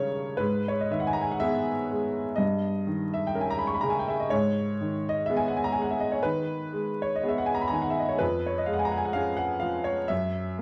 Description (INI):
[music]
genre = classical, romantic nocturne for solo piano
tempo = 57-65 BPM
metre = 4/4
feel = rubato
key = G# minor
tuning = A4 = 440 Hz
[part]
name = warm upright piano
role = solo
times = 0.0-10.6 s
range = E#2 to C#6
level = -28 LUFS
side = equal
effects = none
[sound]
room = moderate large studio reverb, RT60 1.1 s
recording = dark, warm production, vinyl crackle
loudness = -28 LUFS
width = mono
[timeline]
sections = 0.0-10.6 A section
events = none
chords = 0.4 G#m; 2.4 D#7/G; 4.3 G#m; 8.2 C#/E#; 10.1 N.C.